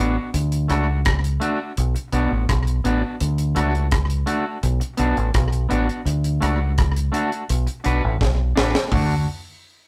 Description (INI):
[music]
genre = roots reggae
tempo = 84 BPM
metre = 4/4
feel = straight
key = D major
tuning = A4 = 441 Hz
[part]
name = clean electric guitar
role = accompaniment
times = 0.0-9.1 s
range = A3 to B4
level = -26 LUFS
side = equal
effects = slapback echo
[part]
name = deep dub fingered electric bass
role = bass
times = 0.0-9.3 s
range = A1 to D2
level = -23 LUFS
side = equal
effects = none
[part]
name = deep reggae drum kit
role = drums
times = 0.3-9.1 s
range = hi-hat, kick drum, rim click, snare drum, toms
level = -26 LUFS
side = equal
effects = slapback echo
[sound]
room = moderate small room ambience, RT60 0.5 s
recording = rough rehearsal-room recording, tube saturation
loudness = -21 LUFS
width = mono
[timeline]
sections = 0.0-8.9 A section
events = drum fill 8.2-8.9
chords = 0.3 D; 1.8 Bm; 3.2 D; 4.6 Bm; 6.1 D; 7.5 Bm; 8.9 D